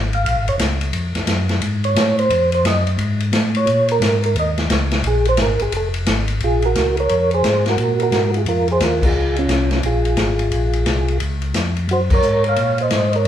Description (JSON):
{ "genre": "soul jazz organ trio", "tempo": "175 BPM", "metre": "4/4", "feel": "swing 64% on 8ths", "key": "Bb minor", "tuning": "A4 = 439 Hz", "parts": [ { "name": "mellow tonewheel organ", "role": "bass", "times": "0.0-13.3 s", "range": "F1 to Bb2", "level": "-20 LUFS", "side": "equal", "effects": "overdrive, chorus vibrato, slow rotary speaker" }, { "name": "percussive tonewheel organ", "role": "melody", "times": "0.1-13.3 s", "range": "Db4 to F5", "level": "-18 LUFS", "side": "right 1 dB", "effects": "chorus vibrato, slow rotary speaker" }, { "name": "swinging big-band drum kit", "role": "drums", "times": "0.1-13.3 s", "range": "crash cymbal, hi-hat, kick drum, ride cymbal, snare drum", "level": "-22 LUFS", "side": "left 1 dB", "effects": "none" } ], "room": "wet large studio reverb, RT60 1.2 s", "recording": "band playing live in one room", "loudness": "-15 LUFS", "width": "side -10 dB against mid", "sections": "0.0-6.4 A section; 6.4-13.3 B section", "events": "tonewheel organ solo 0.0-6.4; band accent 9.0, 12.1", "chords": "0.0 Bbm7; 0.9 F; 3.7 Absus24; 4.4 Dbsus2; 5.0 Absus2; 5.7 Fm; 6.4 Bbm7; 11.9 Ebm7" }